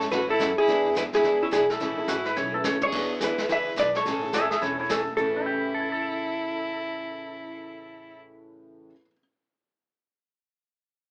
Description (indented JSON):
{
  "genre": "country, western swing",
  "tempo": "213 BPM",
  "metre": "4/4",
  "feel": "swing 62% on 8ths",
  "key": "A major",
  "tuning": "A4 = 441 Hz",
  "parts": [
    { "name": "vintage hollow-body jazz guitar", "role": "melody", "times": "0.0-8.9 s", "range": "E4 to E5", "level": "-27 LUFS", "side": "equal", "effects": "none" },
    { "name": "clear fiddle", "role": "second line", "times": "0.0-8.2 s", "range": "C#4 to B4", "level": "-34 LUFS", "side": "equal", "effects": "none" },
    { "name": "dark upright piano", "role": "accompaniment", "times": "0.0-9.2 s", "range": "A2 to E7", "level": "-39 LUFS", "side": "equal", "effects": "none" },
    { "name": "upright bass", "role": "bass", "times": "0.0-8.9 s", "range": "E1 to A2", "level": "-48 LUFS", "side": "equal", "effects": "none" },
    { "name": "vintage brush drum kit", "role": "drums", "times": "0.0-5.4 s", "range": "brushed snare drum, crash cymbal, hi-hat, kick drum, snare drum, toms", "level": "-35 LUFS", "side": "equal", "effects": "none" },
    { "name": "picked steel-string acoustic guitar", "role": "accompaniment", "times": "0.1-8.9 s", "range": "A2 to G#4", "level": "-36 LUFS", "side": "equal", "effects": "none" },
    { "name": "clean lap steel guitar", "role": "second line", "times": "2.1-8.2 s", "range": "E4 to E5", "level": "-32 LUFS", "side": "equal", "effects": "none" }
  ],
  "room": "moderate club reverb, RT60 0.8 s",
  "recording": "AM radio sound",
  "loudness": "-26 LUFS",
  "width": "mono",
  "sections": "0.0-2.9 A section; 2.9-5.2 B section; 5.2-7.4 C section",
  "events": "drum fill 2.4-2.9",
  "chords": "0.0 F#m7; 0.7 E7; 1.8 Amaj7; 2.9 E7; 4.1 Amaj7",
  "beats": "0.12 0.40 | 0.68 0.96 1.24 1.52 | 1.80 2.08 2.37 2.65 | 2.93 3.21 3.49 3.77 | 4.05 4.33 4.62 4.90 | 5.18 5.46 5.74 6.03 | 6.31 6.59 6.87 7.15"
}